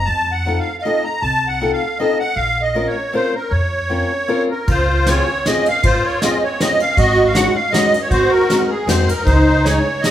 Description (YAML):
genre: musette waltz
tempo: 157 BPM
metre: 3/4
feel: swing 54% on 8ths, rubato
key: Bb harmonic minor, Db major from 4.7 s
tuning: A4 = 439 Hz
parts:
  - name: musette accordion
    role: melody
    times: 0.0-10.1 s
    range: Eb4 to Bb5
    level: -16 LUFS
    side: right 1 dB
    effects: none
  - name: upright bass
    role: bass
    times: 0.0-9.8 s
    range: Ab1 to F2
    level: -20 LUFS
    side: equal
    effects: none
  - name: fingerpicked acoustic archtop guitar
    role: accompaniment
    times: 0.5-10.1 s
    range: Ab3 to Bb4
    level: -22 LUFS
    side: left 4 dB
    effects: none
  - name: soft brush drum kit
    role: drums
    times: 4.7-10.1 s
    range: kick drum, ride cymbal, snare drum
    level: -21 LUFS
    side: equal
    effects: none
room: moderate large studio reverb, RT60 1.4 s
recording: band playing live in one room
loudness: -14 LUFS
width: side -11 dB against mid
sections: 0.0-4.7 A section; 4.7-10.1 B section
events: none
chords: 0.1 F7; 2.4 Bbmadd9; 4.7 Dbmaj7; 7.0 Ab7sus4; 8.1 Ab7; 9.3 Dbsus2